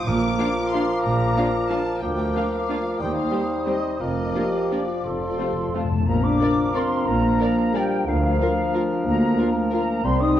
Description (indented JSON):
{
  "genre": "classical, orchestral ballroom waltz",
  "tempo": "163-200 BPM",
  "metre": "3/4",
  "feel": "rubato",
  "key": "Bb major",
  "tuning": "A4 = 440 Hz",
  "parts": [
    { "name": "warm symphonic violin section", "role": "melody", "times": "0.0-10.4 s", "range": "D5 to D6", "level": "-35 LUFS", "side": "left 3 dB", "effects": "none" },
    { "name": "bright large flute ensemble", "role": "second line", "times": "0.0-10.4 s", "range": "F5 to Eb6", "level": "-30 LUFS", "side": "left 1 dB", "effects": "none" },
    { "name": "dark clarinet", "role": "second line", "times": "0.0-10.4 s", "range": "C4 to F4", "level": "-31 LUFS", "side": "left 1 dB", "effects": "none" },
    { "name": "mellow cor anglais", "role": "second line", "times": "0.0-10.4 s", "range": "A4 to C5", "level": "-30 LUFS", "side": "equal", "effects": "none" },
    { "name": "clear bassoon", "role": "accompaniment", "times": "0.0-10.4 s", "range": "F3 to G3", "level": "-28 LUFS", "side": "equal", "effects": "none" },
    { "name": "rich symphonic double bass section", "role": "bass", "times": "0.1-10.3 s", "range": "F1 to Eb2", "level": "-29 LUFS", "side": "right 2 dB", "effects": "none" },
    { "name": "warm symphonic cello section", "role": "bass", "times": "0.1-10.3 s", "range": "C2 to Bb2", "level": "-29 LUFS", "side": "right 2 dB", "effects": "none" },
    { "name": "timpani", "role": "percussion", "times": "0.1-0.5, 5.0-6.1 s", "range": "F2 to Bb2", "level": "-28 LUFS", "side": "left 2 dB", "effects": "none" },
    { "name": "dark symphonic violin section", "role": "second line", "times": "0.4-10.4 s", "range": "F4 to F5", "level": "-32 LUFS", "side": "left 2 dB", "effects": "none" },
    { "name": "rich symphonic viola section", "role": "accompaniment", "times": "0.4-10.4 s", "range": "G3 to Bb4", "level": "-31 LUFS", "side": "right 1 dB", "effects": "none" },
    { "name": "dark French horn section", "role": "sustained chords", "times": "0.4-10.4 s", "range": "F3 to G4", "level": "-25 LUFS", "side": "left 2 dB", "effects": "none" }
  ],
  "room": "wet recital hall reverb, RT60 1.3 s",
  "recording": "worn, warbling old tape, cassette tape, warbly pitch drift",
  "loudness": "-20 LUFS",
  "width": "side -11 dB against mid",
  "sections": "0.0-6.1 A section; 6.1-10.4 B section",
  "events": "timpani fill 5.1-6.1",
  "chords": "0.1 Bb; 2.0 Bb/D; 3.0 Cm/Eb; 4.0 Bb/F; 5.1 F; 6.1 Bb; 8.1 Bb/D"
}